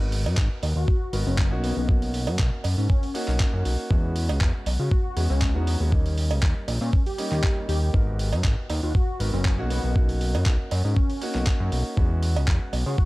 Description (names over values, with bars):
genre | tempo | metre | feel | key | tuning
nu-disco, nu disco | 119 BPM | 4/4 | straight | G# minor | A4 = 439 Hz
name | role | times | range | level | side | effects
warm concert grand piano | accompaniment | 0.0-13.1 s | G3 to A#4 | -33 LUFS | right 1 dB | slapback echo
fat analog bass | bass | 0.0-13.0 s | F#1 to C#3 | -24 LUFS | equal | none
dusty soul sampler-style drum kit | drums | 0.1-12.8 s | handclaps, hi-hat | -33 LUFS | right 1 dB | overdrive
cowbell | percussion | 0.3-12.8 s | none | -33 LUFS | right 6 dB | none
electronic kick drum | drums | 0.4-13.1 s | none | -22 LUFS | equal | overdrive
wide unison lead | melody | 0.8-13.1 s | B3 to G4 | -34 LUFS | left 2 dB | analog chorus, tape echo
room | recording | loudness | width
little or no reverb | none | -21 LUFS | side -20 dB against mid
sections
0.0-13.1 A section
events
none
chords
0.0 G#m9; 1.6 Bmaj7; 3.9 E6; 5.9 D#7; 7.9 G#m9; 9.7 Bmaj7; 12.0 E6